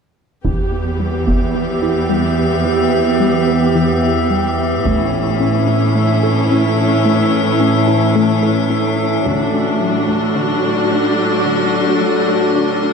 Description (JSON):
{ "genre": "cinematic, hybrid orchestral and electronic film score", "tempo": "109 BPM", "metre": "4/4", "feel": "straight", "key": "E dorian", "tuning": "A4 = 440 Hz", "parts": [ { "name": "tight sequenced synth", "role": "arpeggios", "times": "0.4-12.9 s", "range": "D3 to A4", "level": "-22 LUFS", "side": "left 2 dB", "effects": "chorus, ping-pong delay" }, { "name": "warm symphonic viola section", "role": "accompaniment", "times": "0.5-12.9 s", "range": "B3 to G4", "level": "-18 LUFS", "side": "equal", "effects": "none" }, { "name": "metallic inharmonic drone", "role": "sustained chords", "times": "1.2-12.9 s", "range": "E3 to E5", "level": "-17 LUFS", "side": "left 1 dB", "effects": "chorus, built-in reverb" }, { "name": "warm symphonic cello section", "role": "bass", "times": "0.5-12.9 s", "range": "E2 to A2", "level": "-20 LUFS", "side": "right 2 dB", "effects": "none" }, { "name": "taiko ensemble", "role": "drums", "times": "0.5-1.5, 4.9-5.9, 9.3-10.3 s", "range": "none", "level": "-23 LUFS", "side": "equal", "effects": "none" } ], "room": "wet scoring stage reverb, RT60 2.1 s", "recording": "dark, warm production, high-pass filter", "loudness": "-13 LUFS", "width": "side -5 dB against mid", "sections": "0.5-12.9 A section", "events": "build-up 0.5-12.9", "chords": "0.5 Em; 4.9 A; 9.3 D/A" }